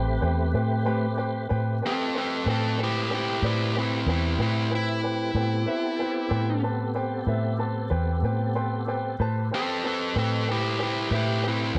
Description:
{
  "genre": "slow blues",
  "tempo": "62 BPM (dotted quarters)",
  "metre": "12/8",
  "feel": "straight",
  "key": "A minor",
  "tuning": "A4 = 441 Hz",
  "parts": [
    { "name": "clear grand piano", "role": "accompaniment", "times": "0.0-11.8 s", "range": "B4 to C6", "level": "-34 LUFS", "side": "equal", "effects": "plate reverb" },
    { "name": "tonewheel organ", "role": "sustained chords", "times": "0.0-11.8 s", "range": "A3 to C5", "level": "-36 LUFS", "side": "equal", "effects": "slow rotary speaker, overdrive, chorus vibrato, plate reverb" },
    { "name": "vintage muted fingered electric bass", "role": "bass", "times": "0.0-11.8 s", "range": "A1 to A2", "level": "-29 LUFS", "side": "equal", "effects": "none" },
    { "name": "mellow electric guitar", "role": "accompaniment", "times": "0.9-1.1 s", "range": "A3 to B4", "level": "-34 LUFS", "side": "equal", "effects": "harmonic tremolo, plate reverb" },
    { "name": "smooth overdriven lead guitar", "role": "melody", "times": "1.9-11.8 s", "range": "C4 to A4", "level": "-29 LUFS", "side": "equal", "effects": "plate reverb" }
  ],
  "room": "light reverb",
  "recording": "none",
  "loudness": "-26 LUFS",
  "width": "mono",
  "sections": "0.0-1.5 A section; 1.5-11.8 B section",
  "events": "grand piano fill 0.5-1.5, 8.2-9.2; lead electric guitar solo 1.5-11.8",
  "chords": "0.0 Am9"
}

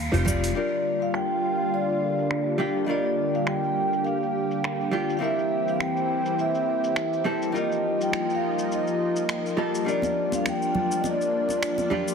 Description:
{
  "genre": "sunset chillout",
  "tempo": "103 BPM",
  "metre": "4/4",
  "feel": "swing 54% on 16ths",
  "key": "Bb major",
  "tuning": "A4 = 437 Hz",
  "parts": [
    { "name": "vintage hollow-body jazz guitar", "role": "accompaniment", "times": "0.0-12.1 s", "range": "G3 to D5", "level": "-29 LUFS", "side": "left 2 dB", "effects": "auto-pan, ping-pong delay" },
    { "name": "upright bass", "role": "bass", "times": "0.0-0.5 s", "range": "F1", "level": "-25 LUFS", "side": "equal", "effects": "none" },
    { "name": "deep house drum kit", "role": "drums", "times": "0.1-12.1 s", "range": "finger snaps, hi-hat, shaker", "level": "-34 LUFS", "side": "right 1 dB", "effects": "overdrive, low-pass filter on perc, studio ambience, low-pass filter on hats, low-pass filter on snare" },
    { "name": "congas", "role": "percussion", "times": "0.3-0.4, 10.0-12.0 s", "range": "none", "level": "-33 LUFS", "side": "right 3 dB", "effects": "none" },
    { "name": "vibraphone with soft mallets", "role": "melody", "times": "0.6-11.9 s", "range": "D5 to G5", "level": "-27 LUFS", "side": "right 1 dB", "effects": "tape echo" },
    { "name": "lush unison pad", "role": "sustained chords", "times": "0.6-12.1 s", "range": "D3 to G4", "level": "-28 LUFS", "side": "equal", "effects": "chorus" }
  ],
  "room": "moderate plate reverb, RT60 2.7 s",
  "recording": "heavily compressed radio sound, multiband compression",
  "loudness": "-23 LUFS",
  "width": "side -6 dB against mid",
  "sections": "0.6-12.1 A section",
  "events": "band accent 0.0",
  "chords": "0.0 F9sus4; 0.6 Bb6; 5.2 C7; 7.5 F9sus4; 9.9 Bb6"
}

